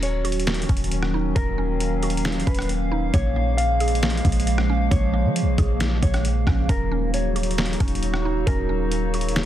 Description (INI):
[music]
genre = hip hop, atmospheric cloud-rap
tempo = 135 BPM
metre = 4/4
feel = half-time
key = Eb minor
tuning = A4 = 440 Hz
[part]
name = mellow electric guitar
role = melody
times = 0.0-9.5 s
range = Bb4 to F5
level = -31 LUFS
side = left 2 dB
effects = low-pass filter, digital delay
[part]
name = warbly tape-like pad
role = sustained chords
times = 0.0-9.5 s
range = Db3 to F5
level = -26 LUFS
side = right 1 dB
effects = chorus, built-in reverb, sidechain pumping
[part]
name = mallet-like synth pluck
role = arpeggios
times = 0.0-9.5 s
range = Bb3 to Ab4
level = -33 LUFS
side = right 6 dB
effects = chorus, low-pass filter, digital delay
[part]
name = clean 808-style bass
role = bass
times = 0.0-9.5 s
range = Eb1 to F3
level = -23 LUFS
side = equal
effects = none
[part]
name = trip hop sampler-style drum kit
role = drums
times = 0.0-9.5 s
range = hi-hat, kick drum, rim click, snare drum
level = -25 LUFS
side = equal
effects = none
[sound]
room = digital ambience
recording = dense, heavily limited modern master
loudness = -20 LUFS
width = side -12 dB against mid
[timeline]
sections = 0.0-9.5 A section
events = none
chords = 0.0 Ebm7; 3.1 Bbm7; 6.7 Ebm7